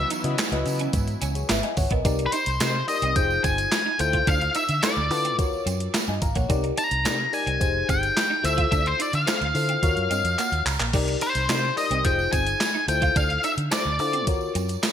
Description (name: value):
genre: early-eighties boogie funk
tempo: 108 BPM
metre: 4/4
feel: straight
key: unclear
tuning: A4 = 440 Hz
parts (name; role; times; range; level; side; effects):
- octave-fuzz lead guitar; melody; 0.0-14.2 s; B4 to Bb5; -24 LUFS; left 1 dB; distortion, ping-pong delay
- brassy analog pad; sustained chords; 0.0-2.0 s; Fb3 to Fb4; -35 LUFS; equal; chorus
- vintage muted fingered electric bass; bass; 0.0-14.8 s; F1 to D3; -28 LUFS; right 1 dB; none
- electric guitar at the edge of break-up; riff; 0.1-14.9 s; Bb3 to F4; -34 LUFS; right 7 dB; ensemble chorus
- crisp 8-bit digital drum machine; drums; 0.1-14.9 s; crash cymbal, handclaps, hi-hat, kick drum, snare drum; -26 LUFS; right 1 dB; gated reverb
- tambourine; percussion; 0.1-14.9 s; none; -38 LUFS; right 7 dB; none
- mellow FM electric piano; accompaniment; 0.2-14.9 s; Eb4 to Bb5; -30 LUFS; left 5 dB; chorus
room: moderate plate reverb, RT60 1.5 s, digital ambience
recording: bright 1980s-style digital production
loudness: -21 LUFS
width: side -9 dB against mid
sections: 0.0-2.0 A section; 2.0-14.9 B section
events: FM electric piano fill 0.9-2.0, 9.8-10.9; drum fill 10.4-10.9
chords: 0.0 Dbm11; 2.0 Cm9; 3.2 Fm9; 4.0 Dm9; 5.4 Ebm9; 6.5 Cm9; 7.6 Fm9; 8.4 Dm9; 9.8 Ebm9; 10.9 Cm9; 12.1 Fm9; 12.9 Dm9; 14.3 Ebm9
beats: 0.38 0.94 1.50 | 2.05 2.61 3.16 3.72 | 4.27 4.83 5.38 5.94 | 6.50 7.05 7.61 8.16 | 8.72 9.27 9.83 10.38 | 10.94 11.49 12.05 12.61 | 13.16 13.72 14.27 14.83